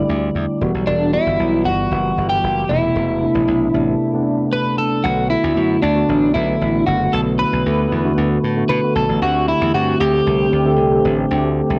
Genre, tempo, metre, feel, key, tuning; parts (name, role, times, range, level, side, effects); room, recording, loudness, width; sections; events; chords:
1980s-style pop; 115 BPM; 4/4; straight; A4 = 440 Hz
twelve-string electric guitar; melody; 0.0-11.8 s; D4 to D5; -21 LUFS; equal; spring reverb, plate reverb
mellow tine electric piano; accompaniment; 0.0-11.8 s; C3 to A4; -21 LUFS; equal; analog chorus, cassette tape, plate reverb
slap bass; bass; 0.0-11.8 s; E1 to B2; -24 LUFS; equal
moderate studio reverb, RT60 0.6 s; home recording on cassette; -17 LUFS; mono
0.0-5.0 A section; 5.0-11.8 B section
0.0 Dsus4; 0.6 Emadd9; 2.7 Amadd9/E; 5.0 Bm7; 9.2 D7sus4